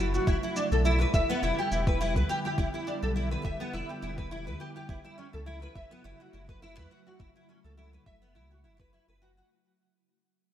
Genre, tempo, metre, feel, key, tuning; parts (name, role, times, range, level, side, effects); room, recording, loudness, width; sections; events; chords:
organic downtempo; 104 BPM; 4/4; swing 54% on 16ths; A4 = 442 Hz
ethereal airy pad; sustained chords; 0.0-9.5 s; C#3 to G4; -38 LUFS; right 1 dB; ensemble chorus, built-in reverb, phaser, sidechain pumping
nylon-string guitar; arpeggios; 0.0-9.5 s; B3 to E5; -31 LUFS; equal; ensemble chorus, digital delay
warm sub bass; bass; 0.0-9.4 s; E1 to F#2; -31 LUFS; equal
bronze singing bowl; texture; 0.0-9.5 s; barely audible
cabasa; drums; 0.1-9.5 s; -46 LUFS; right 2 dB; overdrive, low-pass filter on perc, low-pass filter on snare
electronic kick drum; drums; 0.3-8.9 s; -29 LUFS; equal; overdrive
moderate lush hall reverb, RT60 1.7 s, studio reverb; bright 1980s-style digital production; -27 LUFS; side -11 dB against mid
0.0-9.5 A section
fade-out 0.0-9.5
0.3 Em7; 4.9 F#m7